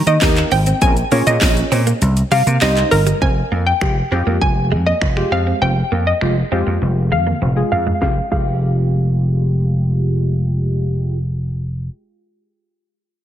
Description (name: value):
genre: dance-pop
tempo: 100 BPM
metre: 4/4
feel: straight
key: F minor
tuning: A4 = 440 Hz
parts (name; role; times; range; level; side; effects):
- direct-recorded clean electric guitar; riff; 0.0-8.4 s; G3 to C4; -25 LUFS; right 6 dB; wide subtle chorus
- hollow square pluck; melody; 0.1-9.8 s; Bb4 to Ab5; -20 LUFS; equal; chorus, sidechain pumping, analog delay
- vintage slap bass; bass; 0.1-11.9 s; F1 to Eb3; -17 LUFS; equal; sidechain pumping
- house drum kit; drums; 0.1-8.5 s; crash cymbal, finger snaps, handclaps, hi-hat, kick drum, shaker, snare drum, toms; -20 LUFS; equal; none
- funky polysynth comp; accompaniment; 0.2-11.2 s; Ab3 to Db5; -23 LUFS; left 1 dB; chorus, sidechain pumping
- tambourine; percussion; 0.2-2.8 s; none; -32 LUFS; left 10 dB; none
room: light reverb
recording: low-pass filter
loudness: -14 LUFS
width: side -11 dB against mid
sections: 0.0-3.2 A section; 3.2-8.0 B section; 8.0-10.4 C section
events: drop 0.0-3.2; kick muted 2.0-3.2; filter sweep 3.2-8.0; drum fill 6.8-8.0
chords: 0.0 Eb; 0.8 Bbm7; 2.0 Cm; 3.2 Fmadd9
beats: 0.22 | 0.82 1.42 2.02 2.62 | 3.22 3.82 4.42 5.02 | 5.62 6.22 6.82 7.42 | 8.02 8.62 9.22 9.82